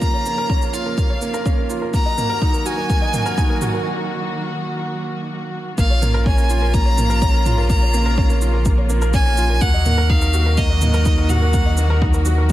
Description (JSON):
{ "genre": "piano and strings electronica", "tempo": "125 BPM", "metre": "4/4", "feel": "straight", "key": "Bb minor", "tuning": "A4 = 440 Hz", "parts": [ { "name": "clear violin", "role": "melody", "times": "0.0-12.0 s", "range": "Eb5 to Bb5", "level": "-23 LUFS", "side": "left 1 dB", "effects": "none" }, { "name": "muted studio string section", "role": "sustained chords", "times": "0.0-12.5 s", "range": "Db3 to Gb4", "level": "-27 LUFS", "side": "right 1 dB", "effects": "sidechain pumping" }, { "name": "felt-muted upright piano", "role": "riff", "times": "0.0-12.5 s", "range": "Bb3 to Eb5", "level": "-24 LUFS", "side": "right 3 dB", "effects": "digital delay" }, { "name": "warm sub bass", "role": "bass", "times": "0.0-12.5 s", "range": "Bb1 to Eb2", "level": "-18 LUFS", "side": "equal", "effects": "tube saturation, sidechain pumping, high-pass filter" }, { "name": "electronic kick drum", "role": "drums", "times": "0.0-12.5 s", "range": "none", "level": "-18 LUFS", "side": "equal", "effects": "overdrive, studio reverb" }, { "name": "electronic shaker and toms", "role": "drums", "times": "0.0-12.5 s", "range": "none", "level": "-27 LUFS", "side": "right 1 dB", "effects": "overdrive, studio reverb" } ], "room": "light reverb, studio reverb", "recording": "none", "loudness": "-16 LUFS", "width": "side -14 dB against mid", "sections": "0.0-5.8 A section; 5.8-12.5 B section", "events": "build-up 0.0-5.8; break 3.9-5.8; drop 5.8-12.5", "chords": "0.0 Bbm; 1.9 Ebm; 5.8 Bbm; 9.6 Ebm", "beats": "| 0.02 0.50 0.98 1.46 | 1.94 2.42 2.90 3.38 | 3.86 4.34 4.82 5.30 | 5.78 6.26 6.74 7.22 | 7.70 8.18 8.66 9.14 | 9.62 10.10 10.58 11.06 | 11.54 12.02 12.50" }